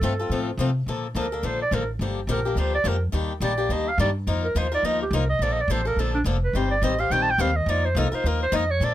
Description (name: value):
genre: acoustic string swing (jazz manouche)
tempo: 211 BPM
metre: 4/4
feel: swing 57% on 8ths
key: Bb major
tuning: A4 = 440 Hz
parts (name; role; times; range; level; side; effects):
- warm clarinet; melody; 0.0-8.9 s; D4 to A5; -25 LUFS; right 2 dB; none
- picked swing-style acoustic guitar; accompaniment; 0.0-8.9 s; D3 to C5; -27 LUFS; left 5 dB; none
- upright bass; bass; 0.0-8.9 s; F1 to C3; -25 LUFS; equal; none
room: light reverb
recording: close, detailed microphones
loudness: -21 LUFS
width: side -13 dB against mid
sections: 0.9-8.9 A section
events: clarinet solo 0.9-8.9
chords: 0.0 F; 0.9 Bbmaj7; 2.0 Gm7; 3.1 Ebmaj7; 4.3 F7sus4; 5.4 Bbmaj7; 6.5 Eb6; 7.7 F7sus4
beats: 0.01 0.30 0.58 | 0.86 1.15 1.43 1.72 | 2.00 2.28 2.57 2.85 | 3.13 3.42 3.70 3.99 | 4.27 4.55 4.84 5.12 | 5.41 5.69 5.97 6.26 | 6.54 6.83 7.11 7.39 | 7.68 7.96 8.25 8.53 | 8.81